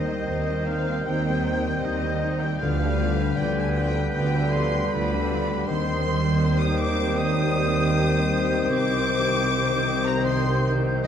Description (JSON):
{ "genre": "classical", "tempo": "78 BPM", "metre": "4/4", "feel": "rubato", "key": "C minor", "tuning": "A4 = 437 Hz", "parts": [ { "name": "rich symphonic violin section", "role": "melody", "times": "0.0-11.1 s", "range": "Eb5 to Eb6", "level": "-32 LUFS", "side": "left 4 dB", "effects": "none" }, { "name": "bright clarinet", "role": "second line", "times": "0.0-11.1 s", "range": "B4 to C5", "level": "-34 LUFS", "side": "left 4 dB", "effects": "none" }, { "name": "bright oboe", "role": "second line", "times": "0.0-11.1 s", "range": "Eb5 to Eb6", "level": "-35 LUFS", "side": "right 2 dB", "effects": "none" }, { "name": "mellow silver concert flute", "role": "second line", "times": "0.0-11.1 s", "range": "G6", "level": "-33 LUFS", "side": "equal", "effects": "none" }, { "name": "warm symphonic violin section", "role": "second line", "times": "0.0-11.1 s", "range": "Eb4 to Eb5", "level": "-35 LUFS", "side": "left 2 dB", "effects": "none" }, { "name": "warm bassoon", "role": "accompaniment", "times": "0.0-11.1 s", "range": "D3 to Eb3", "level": "-32 LUFS", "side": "right 1 dB", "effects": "none" }, { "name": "warm symphonic viola section", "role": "accompaniment", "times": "0.0-11.1 s", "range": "Eb3 to Eb4", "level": "-34 LUFS", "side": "right 2 dB", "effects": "none" }, { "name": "warm French horn section", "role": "sustained chords", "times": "0.0-11.1 s", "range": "Eb3 to C4", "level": "-31 LUFS", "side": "left 4 dB", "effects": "none" }, { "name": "concert harp", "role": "arpeggios", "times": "0.0-11.1 s", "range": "C3 to C6", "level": "-31 LUFS", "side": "left 8 dB", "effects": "none" }, { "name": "rich symphonic cello section", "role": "bass", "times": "0.0-11.1 s", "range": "C3 to Eb3", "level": "-30 LUFS", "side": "right 3 dB", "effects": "none" }, { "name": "warm symphonic double bass section", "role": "bass", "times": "0.0-11.1 s", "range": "C2 to Eb2", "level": "-29 LUFS", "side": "right 2 dB", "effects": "none" }, { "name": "warm tuba", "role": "bass", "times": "0.0-11.1 s", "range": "C2 to Eb2", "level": "-30 LUFS", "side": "right 3 dB", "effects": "none" } ], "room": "moderate scoring stage reverb, RT60 1.4 s", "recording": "dark, warm production", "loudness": "-21 LUFS", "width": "side -8 dB against mid", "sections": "0.0-11.1 A section", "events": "none", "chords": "0.0 Cm/Eb; 2.6 G7/D; 5.7 Cm/Eb; 8.7 Cm", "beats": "0.28 1.07 1.84 | 2.61 3.38 4.15 4.93 | 5.69 6.43 7.19 7.95 | 8.72 9.49 10.27 11.07" }